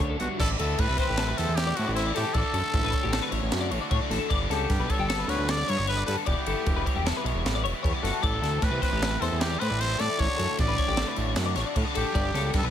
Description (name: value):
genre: math rock and midwest emo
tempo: 153 BPM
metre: 5/4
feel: straight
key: D major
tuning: A4 = 439 Hz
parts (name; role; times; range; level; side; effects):
- twangy electric guitar; accompaniment; 0.0-2.4 s; F#2 to A4; -42 LUFS; right 6 dB; none
- twelve-string electric guitar; arpeggios; 0.0-12.7 s; F#4 to D5; -32 LUFS; left 10 dB; ensemble chorus, plate reverb
- biting overdriven guitar; riff; 0.0-12.7 s; G2 to G4; -33 LUFS; right 2 dB; none
- fat analog bass; bass; 0.0-12.7 s; E1 to A2; -29 LUFS; right 1 dB; none
- crisp fusion drum kit; drums; 0.0-12.6 s; crash cymbal, hi-hat, kick drum, ride cymbal, snare drum; -29 LUFS; equal; none
- growling trumpet; melody; 0.2-12.7 s; E4 to D5; -31 LUFS; equal; plate reverb
room: little or no reverb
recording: none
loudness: -24 LUFS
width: side -10 dB against mid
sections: 0.4-12.7 A section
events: none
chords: 0.4 Am11; 2.4 Dmaj7/A; 4.3 Gadd9; 6.3 Em7; 8.2 Amadd9; 10.2 Dmaj7/A; 12.2 Gadd9